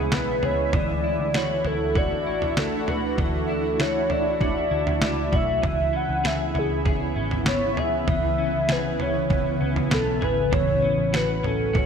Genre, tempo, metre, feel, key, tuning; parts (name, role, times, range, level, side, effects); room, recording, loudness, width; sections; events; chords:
dream pop; 98 BPM; 4/4; straight; D lydian; A4 = 441 Hz
warm velvety synth lead; melody; 0.0-11.9 s; G#4 to F#5; -25 LUFS; equal; chorus, ping-pong delay
shimmering ambient pad; sustained chords; 0.0-11.9 s; C#3 to F#4; -28 LUFS; right 2 dB; chorus, built-in reverb
clean electric guitar; arpeggios; 0.0-11.9 s; E3 to G#4; -30 LUFS; left 4 dB; analog chorus, ping-pong delay
vintage muted picked electric bass; bass; 0.0-11.9 s; G#1 to D2; -30 LUFS; equal
detuned 8-bit digital drum machine; drums; 0.1-11.9 s; kick drum, snare drum, toms; -26 LUFS; right 1 dB; overdrive
moderate lush hall reverb, RT60 1.7 s, digital ambience; bright 1980s-style digital production; -21 LUFS; side -7 dB against mid
0.0-11.9 A section
0.0 C#m7; 0.7 Dadd9; 5.6 C#m7; 10.5 A6